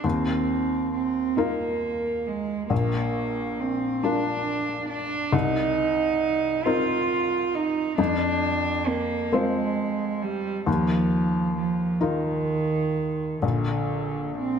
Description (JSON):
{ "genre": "neoclassical piano and strings", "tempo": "45 BPM (dotted quarters)", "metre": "6/8", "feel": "rubato", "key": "unclear", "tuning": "A4 = 440 Hz", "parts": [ { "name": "warm cello", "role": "second line", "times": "0.0-14.6 s", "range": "D3 to F4", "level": "-25 LUFS", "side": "right 4 dB", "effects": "none" }, { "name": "felt-muted upright piano", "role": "accompaniment", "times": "0.0-14.6 s", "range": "Bb1 to C5", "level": "-26 LUFS", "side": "left 4 dB", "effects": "none" } ], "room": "moderate scoring stage reverb, RT60 1.9 s", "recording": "dark, warm production", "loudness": "-23 LUFS", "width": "side -7 dB against mid", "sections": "0.0-14.6 A section", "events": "none", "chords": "0.0 Ebsus2; 2.7 Bb; 5.3 Cm7; 8.0 Fm; 10.7 Ebsus2; 13.4 Bb" }